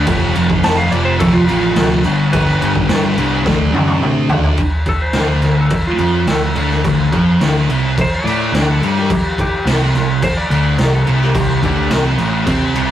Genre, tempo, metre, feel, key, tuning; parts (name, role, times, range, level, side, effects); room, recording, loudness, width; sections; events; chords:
garage rock duo or trio; 106 BPM; 4/4; straight; A4 = 440 Hz
thick fuzz guitar; riff; 0.0-12.9 s; F2 to D4; -16 LUFS; equal; distortion
growling picked electric bass; bass; 0.0-12.9 s; F1 to C3; -19 LUFS; equal; overdrive
raw garage drum kit; drums; 0.1-12.9 s; crash cymbal, kick drum, snare drum, toms; -17 LUFS; equal
clean lap steel guitar; melody; 0.6-11.9 s; F4 to A5; -22 LUFS; right 1 dB
light reverb; rough rehearsal-room recording, warm saturation; -12 LUFS; side -11 dB against mid
0.0-4.6 A section; 4.6-12.9 B section
drum fill 3.5-4.6; electric slide guitar solo 4.6-12.9
0.1 F; 2.1 G; 3.5 D; 4.6 D5; 9.1 Amadd11